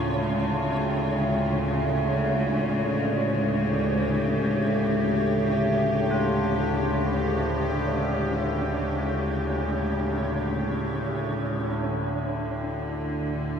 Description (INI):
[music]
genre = dark ambient drone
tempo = free time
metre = none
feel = none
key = unclear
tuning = A4 = 444 Hz
[part]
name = warm studio cello section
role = sustained chords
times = 0.0-13.6 s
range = D2 to G4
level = -26 LUFS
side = left 1 dB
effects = none
[part]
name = tubular bells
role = arpeggios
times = 0.0-13.6 s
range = C#4 to E#4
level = -40 LUFS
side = left 2 dB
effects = none
[part]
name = overtone-sweeping drone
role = drone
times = 0.0-13.6 s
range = D2 to A2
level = -28 LUFS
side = right 1 dB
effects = chorus, built-in reverb
[part]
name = flickering grainy texture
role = texture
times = 0.0-11.8 s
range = C#4 to C#5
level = -33 LUFS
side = equal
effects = built-in reverb
[sound]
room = wet huge ambient reverb, RT60 9.4 s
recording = none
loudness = -23 LUFS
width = side -7 dB against mid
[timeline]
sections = 0.0-11.7 A section; 11.7-13.6 B section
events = filter sweep on synth drone 0.0-11.7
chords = 0.0 C#/D; 11.7 D5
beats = free time